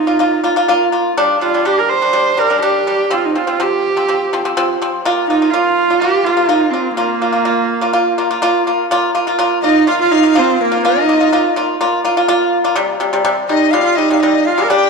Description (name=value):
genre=mongolian traditional, Mongolian folk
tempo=124 BPM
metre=4/4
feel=straight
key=Bb zhi mode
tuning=A4 = 440 Hz
part: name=clear horsehead fiddle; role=melody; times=0.0-14.9 s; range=Bb3 to C5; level=-15 LUFS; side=right 5 dB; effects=none
part: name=pipa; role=arpeggios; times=0.1-14.9 s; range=C3 to F4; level=-14 LUFS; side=left 1 dB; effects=none
part: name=breathy dizi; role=second line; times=9.6-14.9 s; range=Bb4 to G5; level=-18 LUFS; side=left 12 dB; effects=none
room=wet echo chamber reverb, RT60 2.2 s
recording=1960s-style stereo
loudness=-12 LUFS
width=side -4 dB against mid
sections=0.0-8.9 A section; 8.9-14.9 B section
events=none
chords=0.0 Bb5; 1.2 G5; 3.1 F5; 5.0 Bb5; 12.8 C5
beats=0.20 0.68 | 1.17 1.65 2.13 2.62 | 3.10 3.58 4.07 4.55 | 5.04 5.52 6.00 6.49 | 6.97 7.45 7.94 8.42 | 8.90 9.39 9.87 10.35 | 10.83 11.31 11.80 12.28 | 12.76 13.24 13.72 14.21 | 14.69